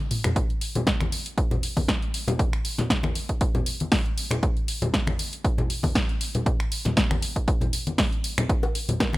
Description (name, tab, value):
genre	nu-disco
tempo	118 BPM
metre	4/4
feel	swing 54% on 16ths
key	none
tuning	none
part	house drum kit	drums	0.1-9.2 s	finger snaps, hi-hat, snare drum, toms	-27 LUFS	equal	none
part	congas and bongos	percussion	0.2-9.2 s	none	-28 LUFS	left 1 dB	none
part	electronic kick drum	drums	0.4-9.1 s	none	-25 LUFS	equal	none
room	digital ambience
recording	none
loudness	-22 LUFS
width	side -18 dB against mid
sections	0.0-9.2 A section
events	drum fill 0.0-0.4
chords	none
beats	| 0.36 0.87 1.38 1.89 | 2.40 2.90 3.41 3.92 | 4.43 4.94 5.45 5.95 | 6.46 6.97 7.48 7.99 | 8.50 9.01